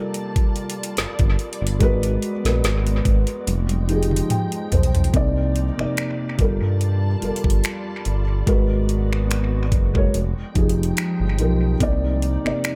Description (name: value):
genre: contemporary R&B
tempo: 72 BPM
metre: 4/4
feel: swing 54% on 16ths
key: C minor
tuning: A4 = 440 Hz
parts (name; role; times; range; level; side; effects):
- felt-muted upright piano; accompaniment; 0.0-12.8 s; C3 to G5; -27 LUFS; equal; none
- glassy FM pad; sustained chords; 0.0-12.8 s; C3 to A5; -34 LUFS; equal; ensemble chorus, built-in reverb, sidechain pumping
- trap drum kit; drums; 0.1-12.8 s; finger snaps, hi-hat, kick drum, snare drum, toms; -24 LUFS; equal; none
- smooth synth bass; bass; 1.0-12.5 s; F1 to G2; -24 LUFS; equal; none
room: digital ambience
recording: echo-heavy mix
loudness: -21 LUFS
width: mono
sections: 0.0-5.1 A section; 5.1-12.8 B section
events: drum fill 3.5-5.1; felt piano fill 3.9-5.1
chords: 0.0 Gm9; 1.8 Abm9; 3.5 Fm9; 5.1 Cm9; 6.4 Gm9; 8.5 Abm9; 10.1 Fm9; 11.8 Cm9